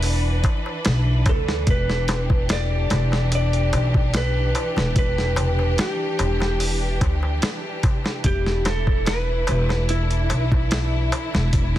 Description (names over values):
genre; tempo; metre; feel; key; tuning
trip hop; 73 BPM; 4/4; straight; E minor; A4 = 441 Hz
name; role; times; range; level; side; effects
electric slide guitar; melody; 0.0-11.8 s; E4 to D5; -27 LUFS; equal; tape echo
clear symphonic string section; sustained chords; 0.0-11.8 s; E3 to B4; -29 LUFS; equal; none
upright bass; bass; 0.0-11.8 s; E1 to D2; -22 LUFS; equal; none
dusty soul sampler-style drum kit; drums; 0.0-11.8 s; hi-hat, kick drum, snare drum; -23 LUFS; equal; studio reverb, soft clipping on snare
darbuka; percussion; 0.0-11.7 s; none; -31 LUFS; left 1 dB; none
room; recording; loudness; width
studio reverb; dense, heavily limited modern master, vinyl crackle; -19 LUFS; side -13 dB against mid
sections
0.0-11.8 A section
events
none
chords
0.0 Em7